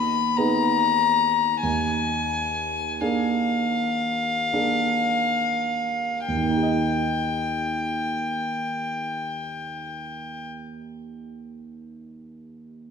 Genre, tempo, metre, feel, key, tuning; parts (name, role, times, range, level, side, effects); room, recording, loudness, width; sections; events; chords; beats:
classical, slow romantic movement for piano quintet; 32-50 BPM; 3/4; rubato; Eb major; A4 = 445 Hz
rich violin; melody; 0.0-10.4 s; F5 to Cb6; -24 LUFS; left 5 dB
warm grand piano; accompaniment; 0.0-12.9 s; Eb2 to Eb5; -27 LUFS; right 3 dB
wet concert hall reverb, RT60 2.4 s; minimal, uncompressed stereo recording; -22 LUFS; side -6 dB against mid
0.0-6.3 A section; 6.3-11.3 B section
slowing down 0.0-6.3
0.0 Abm/Eb; 1.6 Bb7/Eb; 6.3 Eb
0.37 | 1.62 3.00 4.53 | 6.29 7.95 9.61